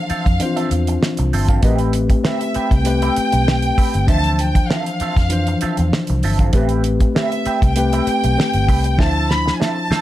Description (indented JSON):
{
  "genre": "lush 1970s-style soul",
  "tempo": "98 BPM",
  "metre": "4/4",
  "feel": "swing 54% on 16ths",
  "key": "A minor",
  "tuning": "A4 = 442 Hz",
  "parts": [
    { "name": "clear studio violin section", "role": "melody", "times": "0.0-10.0 s", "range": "E5 to B5", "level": "-22 LUFS", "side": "equal", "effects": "none" },
    { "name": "tine electric piano", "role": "accompaniment", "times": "0.0-10.0 s", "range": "E3 to C5", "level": "-21 LUFS", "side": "left 4 dB", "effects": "none" },
    { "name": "electric guitar through a small old amp", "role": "riff", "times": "0.1-10.0 s", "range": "C4 to G5", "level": "-27 LUFS", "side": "right 7 dB", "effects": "wah" },
    { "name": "vintage muted fingered electric bass", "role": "bass", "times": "0.1-9.9 s", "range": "G1 to F2", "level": "-19 LUFS", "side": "equal", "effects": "none" },
    { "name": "damped 70s drum kit", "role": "drums", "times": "0.1-10.0 s", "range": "hi-hat, kick drum, snare drum", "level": "-18 LUFS", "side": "equal", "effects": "none" }
  ],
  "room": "small room ambience",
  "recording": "dark, warm production",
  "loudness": "-15 LUFS",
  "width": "side -14 dB against mid",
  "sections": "0.0-10.0 A section",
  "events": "drum fill 9.0-10.0",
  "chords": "0.0 Dm9; 1.6 Am9; 4.1 Dm9; 6.5 Am9; 9.0 Dm9",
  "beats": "0.40 1.01 | 1.63 2.24 2.85 3.47 | 4.08 4.69 5.30 5.92 | 6.53 7.14 7.76 8.37 | 8.98 9.60"
}